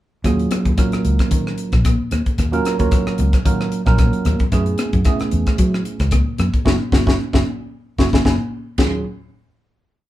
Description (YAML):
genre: electric jazz fusion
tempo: 112 BPM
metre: 4/4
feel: swing 55% on 16ths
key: unclear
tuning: A4 = 440 Hz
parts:
  - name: tine electric piano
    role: accompaniment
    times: 0.2-9.0 s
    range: Gb3 to Bb4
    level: -22 LUFS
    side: right 3 dB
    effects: phaser
  - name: fingered electric bass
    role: bass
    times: 0.2-9.0 s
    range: Gb1 to Gb3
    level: -20 LUFS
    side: equal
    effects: none
  - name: crisp fusion drum kit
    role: drums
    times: 0.2-8.9 s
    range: crash cymbal, hi-hat, kick drum, rim click, snare drum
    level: -18 LUFS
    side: equal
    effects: none
  - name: congas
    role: percussion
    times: 0.2-9.0 s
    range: none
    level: -26 LUFS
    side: left 4 dB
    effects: none
room: moderate small room reverb, RT60 0.5 s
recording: band playing live in one room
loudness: -15 LUFS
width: side -14 dB against mid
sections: 0.2-8.8 groove; 8.8-10.1 final chord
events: band accent 6.7-8.8; drum fill 8.1-8.8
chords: 0.2 Ebm9; 4.5 Gbm11; 8.8 Ebm11